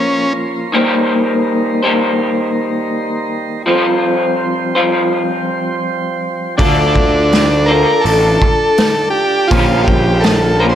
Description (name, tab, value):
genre	psychedelic rock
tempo	82 BPM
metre	4/4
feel	straight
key	D phrygian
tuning	A4 = 440 Hz
part	combo organ	melody	0.0-0.3, 6.6-10.8 s	Db4 to C5	-14 LUFS	equal	tape echo
part	mellow tonewheel organ	sustained chords	0.0-10.8 s	F4 to D6	-23 LUFS	right 3 dB	slow rotary speaker
part	electric guitar through a small old amp	riff	0.0-10.8 s	Bb2 to C5	-15 LUFS	left 1 dB	harmonic tremolo
part	fuzz picked electric bass	bass	6.6-10.8 s	A1 to D2	-16 LUFS	right 1 dB	overdrive
part	raw garage drum kit	drums	6.6-10.4 s	hi-hat, kick drum, snare drum	-16 LUFS	equal	none
room	moderate spring reverb, RT60 2.9 s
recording	none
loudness	-12 LUFS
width	side -10 dB against mid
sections	0.0-10.8 A section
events	none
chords	0.0 Bbmadd9; 0.7 Eb6; 3.7 Fsus2; 6.6 Dm; 9.5 Bbmadd9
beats	0.00 | 0.73 1.46 2.19 2.92 | 3.65 4.39 5.12 5.85 | 6.58 7.31 8.05 8.78 | 9.51 10.24